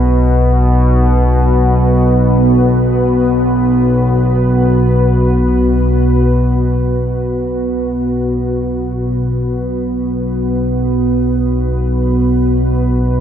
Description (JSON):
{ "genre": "dark ambient drone", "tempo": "free time", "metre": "none", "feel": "none", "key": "unclear", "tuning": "A4 = 441 Hz", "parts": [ { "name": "deep dark ambient pad", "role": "sustained chords", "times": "0.0-13.2 s", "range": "B3 to B4", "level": "-16 LUFS", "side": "right 1 dB", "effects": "chorus, built-in reverb" }, { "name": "analog drone", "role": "drone", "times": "0.0-13.2 s", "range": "B1 to B2", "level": "-13 LUFS", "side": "left 1 dB", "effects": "chorus" } ], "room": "moderate huge ambient reverb, RT60 8.5 s", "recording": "none", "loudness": "-11 LUFS", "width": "side -9 dB against mid", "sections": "0.0-6.8 A section; 6.8-13.2 B section", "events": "none", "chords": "0.0 B5" }